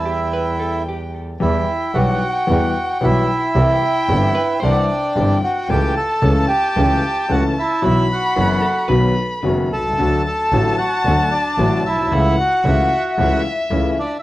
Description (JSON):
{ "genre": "tango", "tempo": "112 BPM", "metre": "4/4", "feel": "rubato", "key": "E minor", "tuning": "A4 = 440 Hz", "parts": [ { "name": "bandoneon", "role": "melody", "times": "0.0-14.2 s", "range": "D4 to A5", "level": "-19 LUFS", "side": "right 1 dB", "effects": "none" }, { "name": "vintage hollow-body jazz guitar", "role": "second line", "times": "0.0-5.2, 8.6-9.5 s", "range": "G4 to C5", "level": "-29 LUFS", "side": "right 3 dB", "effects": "tape echo" }, { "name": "warm violin", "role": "second line", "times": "0.0-14.2 s", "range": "E5 to B5", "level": "-24 LUFS", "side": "left 2 dB", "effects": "none" }, { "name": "warm concert grand piano", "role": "accompaniment", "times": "0.0-13.9 s", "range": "F#1 to A4", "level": "-20 LUFS", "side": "left 2 dB", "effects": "none" }, { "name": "clear double bass", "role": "bass", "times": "0.0-13.9 s", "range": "F#1 to E2", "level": "-20 LUFS", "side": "right 1 dB", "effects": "none" } ], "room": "moderate large studio reverb, RT60 0.9 s", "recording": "worn, warbling old tape, cassette tape, warbly pitch drift", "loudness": "-15 LUFS", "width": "side -16 dB against mid", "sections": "0.0-1.4 A section; 1.4-14.2 B section", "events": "none", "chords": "0.0 Em; 3.6 C; 5.7 A/C#; 7.8 Bsus4; 8.9 B; 10.0 D; 12.1 A/C#", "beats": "0.32 0.87 | 1.41 1.96 2.49 3.03 | 3.56 4.10 4.63 5.16 | 5.69 6.22 6.76 7.29 | 7.83 8.37 8.90 9.44 | 9.98 10.52 11.05 11.59 | 12.12 12.65 13.19 13.72" }